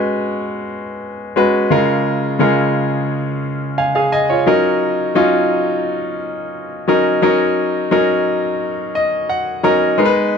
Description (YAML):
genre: pop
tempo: 87 BPM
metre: 4/4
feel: straight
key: unclear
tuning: A4 = 440 Hz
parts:
  - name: bright concert grand piano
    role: solo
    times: 0.0-10.4 s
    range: C#3 to A#5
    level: -14 LUFS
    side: left 1 dB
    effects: none
room: moderate booth ambience, RT60 0.2 s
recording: none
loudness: -14 LUFS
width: side -6 dB against mid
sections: 0.0-10.0 A section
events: grand piano fill 3.4-4.5, 8.6-10.0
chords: 0.0 C#7sus4; 1.7 A#m7/C#; 4.5 D#m7; 7.2 F#6